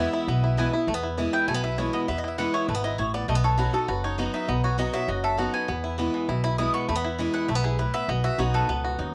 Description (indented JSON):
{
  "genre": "bluegrass",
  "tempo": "200 BPM",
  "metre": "4/4",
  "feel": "straight",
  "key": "E major",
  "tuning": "A4 = 440 Hz",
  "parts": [
    { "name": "mandolin", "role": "melody", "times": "0.0-0.7 s", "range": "none", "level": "barely audible", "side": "none", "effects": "none" },
    { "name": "clear fiddle", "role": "second line", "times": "0.0-0.7 s", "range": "E4", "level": "-38 LUFS", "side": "equal", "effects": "none" },
    { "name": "picked acoustic archtop guitar", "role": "accompaniment", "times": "0.0-9.1 s", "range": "E2 to F#4", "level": "-32 LUFS", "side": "equal", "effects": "none" },
    { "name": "bluegrass banjo", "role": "arpeggios", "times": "0.0-9.1 s", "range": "E3 to A4", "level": "-31 LUFS", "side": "equal", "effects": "none" },
    { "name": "mandolin", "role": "stabs", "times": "0.0-8.8 s", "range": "B3 to D#6", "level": "-32 LUFS", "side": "equal", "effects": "none" },
    { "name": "upright bass", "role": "bass", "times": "0.0-9.1 s", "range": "F#1 to E2", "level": "-30 LUFS", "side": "equal", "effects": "none" }
  ],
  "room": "moderate booth ambience, RT60 0.3 s",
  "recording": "home recording on cassette",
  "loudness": "-26 LUFS",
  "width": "mono",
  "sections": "0.9-9.1 A section",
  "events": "mandolin solo 0.9-9.1",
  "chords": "0.0 E; 3.3 B; 5.7 E",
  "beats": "0.28 0.58 | 0.88 1.18 1.48 1.78 | 2.08 2.38 2.69 2.99 | 3.29 3.59 3.89 4.19 | 4.49 4.79 5.09 5.39 | 5.69 5.99 6.29 6.59 | 6.89 7.19 7.49 7.79 | 8.09 8.39 8.69 8.99"
}